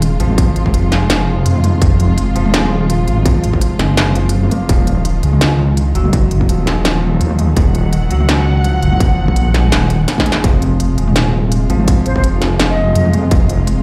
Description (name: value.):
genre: half-time drum and bass.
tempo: 167 BPM.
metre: 4/4.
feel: swing 55% on 16ths, half-time.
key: F phrygian.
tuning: A4 = 443 Hz.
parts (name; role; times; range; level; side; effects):
dark studio string section; sustained chords; 0.0-13.8 s; C3 to Gb5; -24 LUFS; equal; sidechain pumping.
felt-muted upright piano; arpeggios; 0.0-13.8 s; Eb3 to Bb3; -25 LUFS; equal; vintage 12-bit sampler grit, tape echo.
deep soft wobble bass; bass; 0.0-13.8 s; Eb1 to F2; -16 LUFS; equal; chorus.
industrial drum kit; drums; 0.0-13.8 s; hi-hat, snare drum, toms; -20 LUFS; equal; overdrive.
electronic kick drum; drums; 0.4-13.4 s; none; -17 LUFS; equal; distortion, overdrive.
mellow silver concert flute; melody; 12.1-13.1 s; C5 to Eb5; -24 LUFS; equal; digital delay.
room: light reverb, small room ambience.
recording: played on a big sound system in a bare room, large studio reverb.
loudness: -14 LUFS.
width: mono.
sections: 0.0-13.8 A section.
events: drum fill 10.1-10.4.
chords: 0.0 Fm; 4.7 Ebmadd9; 10.4 Fm.